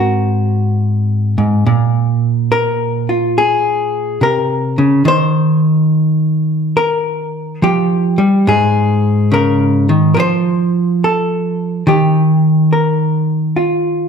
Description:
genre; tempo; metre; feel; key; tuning
solo jazz; 71 BPM; 4/4; swing 66% on 8ths; unclear; A4 = 442 Hz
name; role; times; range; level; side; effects
hollow-body jazz guitar; solo; 0.0-14.1 s; Ab2 to C5; -12 LUFS; equal; none
room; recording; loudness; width
moderate large studio reverb, RT60 1.2 s; dark, warm production; -12 LUFS; side -6 dB against mid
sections
0.0-14.1 A section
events
none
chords
0.0 Ab9; 1.7 Bb7(no3); 5.1 Ebadd9; 8.5 Absus2; 10.2 N.C.; 11.9 Ebadd9

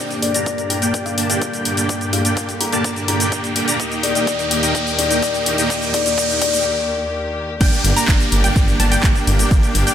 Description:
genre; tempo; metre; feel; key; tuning
EDM, festival progressive house; 126 BPM; 4/4; straight; G minor; A4 = 440 Hz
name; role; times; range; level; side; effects
rich studio string section; sustained chords; 0.0-9.9 s; Eb2 to G4; -25 LUFS; left 1 dB; vintage 12-bit sampler grit, sidechain pumping, low-pass filter
dense compressed supersaw; riff; 0.0-9.9 s; Bb3 to Bb5; -21 LUFS; right 1 dB; sidechain pumping, low-pass filter, digital delay
riser and downlifter; sound effects; 0.0-9.9 s; none; -25 LUFS; right 1 dB; none
house drum kit; drums; 0.1-9.9 s; crash cymbal, handclaps, hi-hat, ride cymbal, shaker; -22 LUFS; left 2 dB; overdrive, studio reverb
kalimba; melody; 0.2-6.6 s; D5 to Bb5; -23 LUFS; left 5 dB; digital delay
electronic kick drum; drums; 0.5-9.6 s; none; -17 LUFS; equal; overdrive, high-pass filter on kick, studio reverb
wide unison pluck; arpeggios; 7.6-9.9 s; G5 to Bb5; -24 LUFS; right 1 dB; sidechain pumping, digital delay
detuned saw bass; bass; 7.6-9.8 s; G1; -18 LUFS; equal; sidechain pumping
room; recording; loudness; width
moderate digital room reverb, RT60 0.9 s, digital ambience; none; -15 LUFS; side -10 dB against mid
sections
0.0-7.6 A section; 7.6-9.9 B section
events
build-up 0.0-7.6; riser 0.0-6.7; filter sweep on supersaw synth 0.0-7.6; filter sweep on string section 0.0-7.6; drum fill 3.8-6.7; break 6.7-7.6; drop 7.6-9.9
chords
0.0 Gm; 3.8 Eb; 7.6 Gm

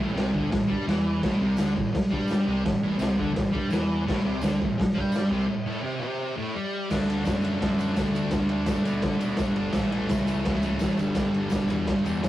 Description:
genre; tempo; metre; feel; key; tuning
garage rock duo or trio; 169 BPM; 4/4; straight; unclear; A4 = 439 Hz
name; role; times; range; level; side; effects
thick fuzz guitar; riff; 0.0-12.3 s; G2 to D4; -29 LUFS; equal; distortion
fuzz picked electric bass; bass; 0.0-12.3 s; G1 to D3; -32 LUFS; left 1 dB; overdrive
raw garage drum kit; drums; 0.2-12.3 s; crash cymbal, kick drum, ride cymbal, snare drum; -25 LUFS; equal; vintage 12-bit sampler grit
tambourine; percussion; 1.6-12.3 s; none; -49 LUFS; right 2 dB; none
room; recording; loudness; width
light reverb; rough rehearsal-room recording, warm saturation; -23 LUFS; side -14 dB against mid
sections
0.0-6.9 A section; 6.9-12.3 B section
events
break 5.5-6.9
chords
0.0 A5; 6.9 D; 9.7 A; 11.0 G

